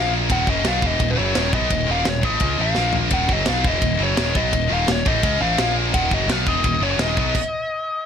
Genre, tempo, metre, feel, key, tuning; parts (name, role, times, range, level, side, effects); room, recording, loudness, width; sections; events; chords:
heavy metal; 170 BPM; 4/4; straight; Eb minor; A4 = 445 Hz
smooth overdriven lead guitar; melody; 0.0-8.1 s; Cb5 to Gb5; -23 LUFS; left 2 dB
heavy high-gain guitar; riff; 0.0-7.3 s; Eb2 to Db4; -25 LUFS; left 14 dB; distortion
heavy high-gain guitar; riff; 0.0-7.4 s; Eb2 to Db4; -25 LUFS; right 15 dB; distortion
fuzz picked electric bass; bass; 0.0-7.3 s; Eb1 to Db2; -24 LUFS; right 1 dB; overdrive
tight metal drum kit; drums; 0.3-7.4 s; crash cymbal, kick drum, ride cymbal, snare drum, toms; -24 LUFS; equal
small room ambience; -17 LUFS; side -8 dB against mid
0.0-8.1 A section
drum fill 2.8-3.1; stop 7.3-8.1
0.3 Ebm; 2.8 Bb5; 3.1 Ebm; 5.6 Bb5; 5.9 Ebm; 7.3 N.C.